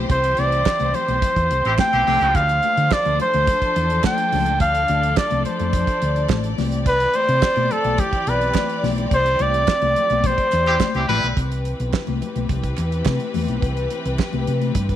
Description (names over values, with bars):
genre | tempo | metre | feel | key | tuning
disco | 106 BPM | 4/4 | straight | C major | A4 = 440 Hz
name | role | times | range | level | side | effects
dark studio string section | sustained chords | 0.0-15.0 s | E3 to D5 | -28 LUFS | left 1 dB | none
hollow-body short-scale fingered electric bass | bass | 0.0-15.0 s | A1 to D3 | -23 LUFS | equal | none
clear flugelhorn | melody | 0.1-11.1 s | G4 to G5 | -19 LUFS | equal | none
damped 70s drum kit | drums | 0.1-15.0 s | hi-hat, kick drum, snare drum | -23 LUFS | right 2 dB | none
congas | percussion | 0.1-14.9 s | none | -29 LUFS | left 13 dB | none
group handclap | percussion | 0.7-14.3 s | none | -38 LUFS | right 12 dB | none
bright horn section | stabs | 1.6-2.4, 10.7-11.3 s | D3 to B4 | -23 LUFS | equal | slapback echo
room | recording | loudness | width
light reverb, small room ambience | 1960s-style stereo with parts hard left and right | -17 LUFS | side -11 dB against mid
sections
0.0-11.4 A section; 11.4-15.0 B section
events
band accent 0.1-2.4, 9.1-11.4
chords
0.0 C; 2.4 Dm7; 6.6 Cmaj7